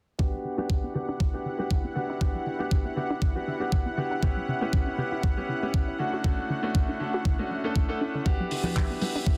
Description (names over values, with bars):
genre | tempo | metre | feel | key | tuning
nu-disco, nu disco | 119 BPM | 4/4 | swing 54% on 16ths | E dorian | A4 = 440 Hz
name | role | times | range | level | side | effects
clear concert grand piano | accompaniment | 0.2-9.4 s | A3 to A4 | -34 LUFS | equal | sidechain pumping, low-pass filter, digital delay
lush unison pad | sustained chords | 0.9-9.4 s | E4 to F#5 | -38 LUFS | equal | chorus, sidechain pumping
unison pluck | arpeggios | 0.2-9.3 s | C#3 to F#4 | -37 LUFS | equal | sidechain pumping, tape echo
electronic kick drum | drums | 0.2-9.4 s | none | -27 LUFS | equal | overdrive, small room reverb
damped 70s drum kit | drums | 8.5-9.1 s | handclaps, hi-hat | -36 LUFS | equal | small room reverb
congas | percussion | 8.6-8.7 s | none | -35 LUFS | equal | none
room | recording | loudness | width
light reverb | dense, heavily limited modern master | -28 LUFS | mono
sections
0.2-9.4 A section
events
filter sweep on grand piano 0.2-9.4; filter sweep on synth arpeggio sound 0.2-9.4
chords
0.2 Em9; 4.2 A7 (rootless); 6.0 Bm7 (rootless); 8.3 Em9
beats
| 0.19 0.70 1.20 1.71 | 2.21 2.71 3.22 3.72 | 4.23 4.73 5.24 5.74 | 6.24 6.75 7.25 7.76 | 8.26 8.76 9.27